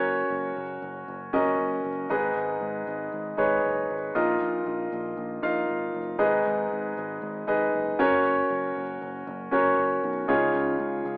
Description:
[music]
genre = piano-driven pop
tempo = 117 BPM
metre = 4/4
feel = straight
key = unclear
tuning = A4 = 440 Hz
[part]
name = warm concert grand piano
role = accompaniment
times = 0.0-11.2 s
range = Ab2 to F5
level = -24 LUFS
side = equal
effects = plate reverb
[part]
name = picked electric bass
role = bass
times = 0.0-11.2 s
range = Gb1 to Db2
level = -38 LUFS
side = equal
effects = none
[sound]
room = moderate studio reverb, RT60 0.6 s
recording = rough home demo mix, AM radio sound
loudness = -24 LUFS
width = side -27 dB against mid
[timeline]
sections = 0.0-11.2 A section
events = none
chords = 0.0 Gb; 2.1 Abm; 4.2 Bbsus4; 6.2 Abm; 8.0 Gb; 10.3 Dbadd9

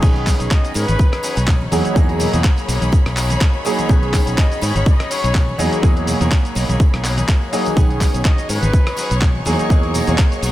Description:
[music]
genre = filtered disco house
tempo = 124 BPM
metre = 4/4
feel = swing 55% on 16ths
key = B major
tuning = A4 = 440 Hz
[part]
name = warm grand piano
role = accompaniment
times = 0.0-10.5 s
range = D#3 to G#4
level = -23 LUFS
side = right 2 dB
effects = phaser, sidechain pumping
[part]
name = rich studio violin section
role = sustained chords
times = 0.0-10.5 s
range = C#5 to C#6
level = -28 LUFS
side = left 1 dB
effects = sidechain pumping
[part]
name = direct-recorded clean electric guitar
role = riff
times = 0.0-10.5 s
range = F#3 to G#4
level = -28 LUFS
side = left 2 dB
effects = sidechain pumping
[part]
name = fingered electric bass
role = bass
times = 0.0-10.5 s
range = G#1 to G#2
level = -20 LUFS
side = equal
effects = tube saturation, sidechain pumping
[part]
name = dusty soul sampler-style drum kit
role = drums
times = 0.0-10.5 s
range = crash cymbal, handclaps, hi-hat, rim click, shaker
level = -25 LUFS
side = equal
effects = sidechain pumping on perc, studio reverb, sidechain pumping on hats, sidechain pumping on cymbals
[part]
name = electronic kick drum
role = drums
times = 0.0-10.3 s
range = none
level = -14 LUFS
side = equal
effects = studio reverb
[part]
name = tambourine and congas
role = percussion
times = 0.0-10.5 s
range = none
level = -29 LUFS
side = left 1 dB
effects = none
[part]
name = clear trumpet section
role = melody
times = 0.5-1.4, 4.4-9.2 s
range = B4 to D#5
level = -27 LUFS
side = left 1 dB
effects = vintage 12-bit sampler grit, sidechain pumping, tape echo
[sound]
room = small room ambience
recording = none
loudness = -14 LUFS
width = side -14 dB against mid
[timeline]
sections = 0.0-10.5 A section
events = none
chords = 0.0 B69; 1.7 Emaj9#11; 3.9 B69; 5.6 Emaj9#11; 7.8 B69; 9.5 Emaj9#11

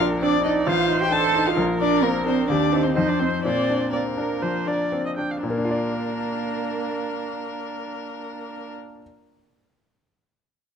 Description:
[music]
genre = quick classical-period movement for piano quartet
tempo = 116-135 BPM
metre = 4/4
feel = straight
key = Bb major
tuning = A4 = 439 Hz
[part]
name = muted violin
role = melody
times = 0.0-8.7 s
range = Bb4 to A5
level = -28 LUFS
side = left 10 dB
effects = none
[part]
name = muted cello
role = second line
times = 0.0-8.7 s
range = Bb3 to A4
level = -25 LUFS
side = right 6 dB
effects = none
[part]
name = bright grand piano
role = accompaniment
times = 0.0-9.0 s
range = A1 to D5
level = -25 LUFS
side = left 2 dB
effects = none
[part]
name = muted viola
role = accompaniment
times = 0.0-8.7 s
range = D4 to G5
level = -28 LUFS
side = right 2 dB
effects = none
[sound]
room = moderate recital hall reverb, RT60 1.3 s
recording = close, detailed microphones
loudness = -20 LUFS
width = side -7 dB against mid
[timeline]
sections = 0.0-5.4 A section; 5.4-9.5 B section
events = slowing down 0.7-5.4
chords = 0.0 Bb; 0.7 F13/A; 1.6 Bb; 2.5 Cm/Eb; 3.0 F5; 3.4 Bb

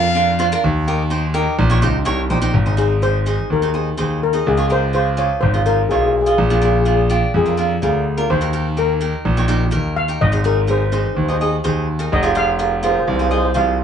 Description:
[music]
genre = calypso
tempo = 125 BPM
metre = 4/4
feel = straight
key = Ab major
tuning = A4 = 436 Hz
[part]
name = brilliant trumpet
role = second line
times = 0.0-0.6 s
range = F5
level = -21 LUFS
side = left 4 dB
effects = none
[part]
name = cavaquinho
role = accompaniment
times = 0.0-13.8 s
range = D4 to Eb5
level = -20 LUFS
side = right 3 dB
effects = none
[part]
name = clear concert grand piano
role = bass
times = 0.0-13.8 s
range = F1 to F2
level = -18 LUFS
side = equal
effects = none
[part]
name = steel pan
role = melody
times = 2.8-13.8 s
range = Ab4 to F5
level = -20 LUFS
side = left 4 dB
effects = none
[sound]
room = wet small room reverb, RT60 0.5 s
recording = heard from further back in the room, nothing above 10.5 kHz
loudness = -15 LUFS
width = side -8 dB against mid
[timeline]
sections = 0.0-2.5 A section; 2.5-13.8 B section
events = steel pan solo 2.5-13.8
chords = 0.0 Bb; 0.6 Eb; 2.5 Ab; 4.5 Db; 6.4 Bb7; 8.3 Eb; 10.2 Ab; 12.1 Fm

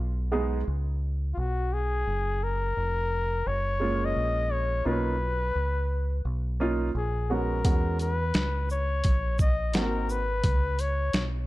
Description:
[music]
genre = hip hop, jazz-hop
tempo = 86 BPM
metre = 4/4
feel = swing 66% on 16ths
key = F# major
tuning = A4 = 440 Hz
[part]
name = deep dub fingered electric bass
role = bass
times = 0.0-11.5 s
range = E#1 to E2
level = -29 LUFS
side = equal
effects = none
[part]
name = warm upright piano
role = accompaniment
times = 0.3-10.2 s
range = G#3 to G#4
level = -30 LUFS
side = right 2 dB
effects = none
[part]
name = warm flugelhorn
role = melody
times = 1.3-11.2 s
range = E#4 to D#5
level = -30 LUFS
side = left 3 dB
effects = none
[part]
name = boom bap sampler-style drum kit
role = drums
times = 7.6-11.4 s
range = hi-hat, kick drum, shaker, snare drum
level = -26 LUFS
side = equal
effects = none
[sound]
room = light reverb, digital ambience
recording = dark, warm production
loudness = -25 LUFS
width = side -18 dB against mid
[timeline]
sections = 0.0-11.5 A section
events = none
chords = 0.0 C#7(no3); 2.1 F#maj7; 4.9 Bmaj9#11; 7.6 E69; 9.7 G#9; 10.4 C#7(no3)

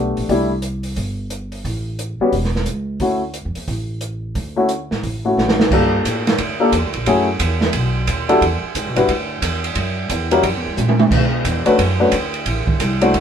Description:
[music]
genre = jazz, big band swing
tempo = 177 BPM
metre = 4/4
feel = swing 63% on 8ths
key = D major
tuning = A4 = 441 Hz
[part]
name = warm baby grand piano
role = accompaniment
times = 0.0-13.1 s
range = G3 to C5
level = -16 LUFS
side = left 2 dB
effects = none
[part]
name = upright bass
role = bass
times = 0.0-13.2 s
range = E1 to B2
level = -22 LUFS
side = right 1 dB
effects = none
[part]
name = open jazz drum kit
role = drums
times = 0.2-13.2 s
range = crash cymbal, hi-hat, kick drum, ride cymbal, snare drum, toms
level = -20 LUFS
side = right 2 dB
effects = none
[sound]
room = moderate studio reverb, RT60 0.5 s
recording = band playing live in one room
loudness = -16 LUFS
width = side -8 dB against mid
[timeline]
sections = 0.0-5.7 A section; 5.7-13.2 B section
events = drum fill 5.4-5.7, 10.8-11.1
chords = 0.3 C6; 1.6 A; 3.0 Dmaj9; 5.7 Gm9; 7.1 F#m7; 7.7 B7alt; 8.4 Em7; 9.8 F#7; 11.1 Bm9; 12.5 D9

